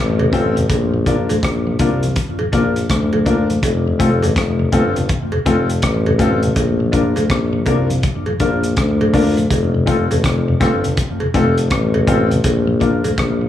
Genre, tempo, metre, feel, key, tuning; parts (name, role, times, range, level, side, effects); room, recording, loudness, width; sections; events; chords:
roots reggae; 82 BPM; 4/4; swing 64% on 16ths; F major; A4 = 440 Hz
mellow tuba; bass; 0.0-13.5 s; F1 to D2; -17 LUFS; left 1 dB
mellow tonewheel organ; accompaniment; 0.2-13.5 s; F2 to F4; -22 LUFS; left 1 dB; slow rotary speaker, tape echo
cowbell; percussion; 0.2-13.2 s; -25 LUFS; right 3 dB
warm upright piano; stabs; 0.3-13.0 s; C4 to Bb4; -22 LUFS; left 3 dB
crunchy breakbeat drum kit; drums; 0.3-13.4 s; hi-hat, kick drum, rim click; -20 LUFS; equal
light reverb; small room ambience; -14 LUFS; side -11 dB against mid
0.0-13.5 A section
0.0 F; 0.7 Bb; 3.6 F; 6.6 Bb; 9.5 F; 12.4 Bb